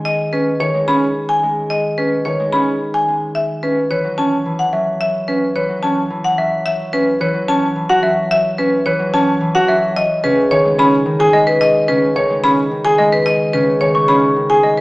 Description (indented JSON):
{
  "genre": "classical, minimalist pattern music",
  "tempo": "109 BPM",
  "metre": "3/4",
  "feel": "straight",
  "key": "unclear",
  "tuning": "A4 = 440 Hz",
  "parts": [
    { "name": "concert harp", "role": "accompaniment", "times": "0.0-14.8 s", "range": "C#3 to G#3", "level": "-21 LUFS", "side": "equal", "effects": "none" },
    { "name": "marimba with hard mallets", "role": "melody", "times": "0.1-14.8 s", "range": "B4 to B5", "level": "-16 LUFS", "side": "left 1 dB", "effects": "none" },
    { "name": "clear concert grand piano", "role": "arpeggios", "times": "0.3-14.7 s", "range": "C#4 to C#5", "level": "-18 LUFS", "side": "right 2 dB", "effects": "none" },
    { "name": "xylophone with rubber mallets", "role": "arpeggios", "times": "4.7-14.8 s", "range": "D#5 to C#6", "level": "-20 LUFS", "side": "equal", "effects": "none" }
  ],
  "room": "wet recital hall reverb, RT60 1.5 s",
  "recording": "small speaker sound",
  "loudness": "-13 LUFS",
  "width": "side -20 dB against mid",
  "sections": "0.0-14.8 A section",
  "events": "none",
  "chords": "0.0 G#m; 3.4 Bsus4 (rootless); 10.0 G#m"
}